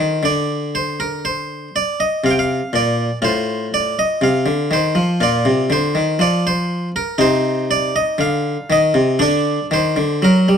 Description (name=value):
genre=classical, baroque-style suite movement for harpsichord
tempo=60 BPM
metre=4/4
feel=rubato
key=Bb major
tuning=A4 = 440 Hz
part: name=harpsichord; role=solo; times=0.0-10.6 s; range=A2 to G5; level=-15 LUFS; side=equal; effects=none
room=moderate studio reverb, RT60 0.8 s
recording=dark, warm production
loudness=-15 LUFS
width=side -7 dB against mid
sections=0.0-10.6 A section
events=none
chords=0.0 Bb; 3.2 F/A; 5.2 Bb; 7.2 Cmadd9; 9.2 D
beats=0.23 1.24 2.24 | 3.22 4.21 5.21 6.19 | 7.19 8.19 9.21 10.24